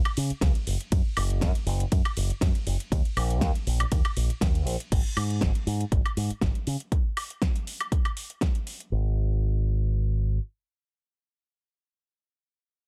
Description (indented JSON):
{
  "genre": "nu-disco, nu disco",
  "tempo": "120 BPM",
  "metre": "4/4",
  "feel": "swing 53% on 16ths",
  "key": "unclear",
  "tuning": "A4 = 439 Hz",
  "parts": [
    { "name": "pop drum kit", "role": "drums", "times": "0.1-8.9 s", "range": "crash cymbal, hi-hat, ride cymbal, snare drum, woodblock", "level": "-35 LUFS", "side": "equal", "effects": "overdrive" },
    { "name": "fingered electric bass with an envelope filter", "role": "bass", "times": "0.2-10.4 s", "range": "F#1 to C#3", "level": "-28 LUFS", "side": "equal", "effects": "none" },
    { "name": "electronic kick drum", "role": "drums", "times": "0.4-8.5 s", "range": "none", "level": "-28 LUFS", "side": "equal", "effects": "overdrive" }
  ],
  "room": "little or no reverb",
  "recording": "none",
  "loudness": "-27 LUFS",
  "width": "mono",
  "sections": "0.0-4.9 A section; 4.9-8.9 B section; 8.9-12.9 C section",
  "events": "drop 0.0-4.9",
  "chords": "none"
}